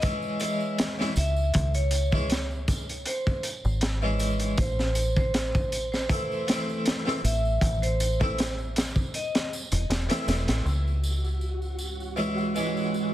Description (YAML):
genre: trip hop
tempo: 79 BPM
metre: 4/4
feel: swing 54% on 16ths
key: C# harmonic minor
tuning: A4 = 440 Hz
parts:
  - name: vibraphone with medium hard mallets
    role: melody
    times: 0.0-9.5 s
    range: B#4 to E5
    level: -32 LUFS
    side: equal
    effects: tape echo
  - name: harpsichord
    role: accompaniment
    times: 0.0-13.1 s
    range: E3 to E4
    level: -30 LUFS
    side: equal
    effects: tremolo, vintage 12-bit sampler grit, tape echo
  - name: crunchy breakbeat drum kit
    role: drums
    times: 0.0-10.7 s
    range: hi-hat, kick drum, snare drum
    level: -28 LUFS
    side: equal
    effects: none
  - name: tambourine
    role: percussion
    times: 0.0-13.1 s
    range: none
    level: -41 LUFS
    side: right 2 dB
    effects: none
  - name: deep dub fingered electric bass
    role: bass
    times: 1.2-13.1 s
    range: E1 to C#2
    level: -27 LUFS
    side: equal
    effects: none
  - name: deep dark ambient pad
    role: sustained chords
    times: 11.9-13.1 s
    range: G#3 to C#5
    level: -32 LUFS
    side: right 4 dB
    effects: chorus, built-in reverb
  - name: flickering grainy texture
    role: texture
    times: 10.9-13.1 s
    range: F#4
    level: -38 LUFS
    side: right 1 dB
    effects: built-in reverb
room: small room ambience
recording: dense, heavily limited modern master, vinyl crackle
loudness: -24 LUFS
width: side -13 dB against mid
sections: 0.0-10.7 A section; 10.7-13.1 B section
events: kick drops out 9.1-10.7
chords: 0.0 C#m; 4.6 Am; 10.7 C#m